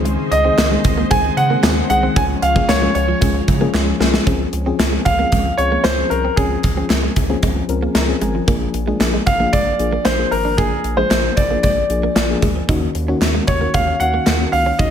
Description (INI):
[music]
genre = 1980s-style pop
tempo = 114 BPM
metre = 4/4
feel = straight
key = Db major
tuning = A4 = 440 Hz
[part]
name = FM electric piano with tremolo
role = accompaniment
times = 0.0-14.9 s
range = Eb3 to Bb5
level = -22 LUFS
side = left 6 dB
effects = none
[part]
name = string machine, full ensemble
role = sustained chords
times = 0.0-4.2 s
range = Db3 to Eb5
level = -27 LUFS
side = equal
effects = ensemble chorus
[part]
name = round analog bass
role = bass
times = 0.0-14.9 s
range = Ab1 to Db3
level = -22 LUFS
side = right 1 dB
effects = none
[part]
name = direct-recorded clean electric guitar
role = riff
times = 0.1-14.9 s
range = F3 to Eb4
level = -26 LUFS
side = right 5 dB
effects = wide subtle chorus, ping-pong delay
[part]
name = gated 80s drum kit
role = drums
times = 0.1-14.9 s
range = hi-hat, kick drum, snare drum, tambourine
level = -18 LUFS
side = equal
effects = gated reverb
[part]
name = clear concert grand piano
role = melody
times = 0.3-14.9 s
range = Ab4 to Ab5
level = -18 LUFS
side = right 1 dB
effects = ping-pong delay
[part]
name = group handclap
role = percussion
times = 0.6-14.4 s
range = none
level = -34 LUFS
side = right 7 dB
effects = none
[sound]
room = light reverb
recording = none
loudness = -14 LUFS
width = side -8 dB against mid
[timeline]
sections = 0.0-4.3 A section; 4.3-14.9 B section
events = drum fill 3.7-4.3; FM electric piano fill 7.7-8.5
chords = 0.0 Ab; 2.2 Db; 4.3 Dbmaj7; 8.5 Bb7; 12.7 Ebm7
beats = | 0.06 0.58 1.11 1.64 | 2.16 2.69 3.21 3.74 | 4.27 4.79 5.32 5.85 | 6.37 6.90 7.43 7.95 | 8.48 9.01 9.53 10.06 | 10.58 11.11 11.64 12.16 | 12.69 13.21 13.74 14.27 | 14.79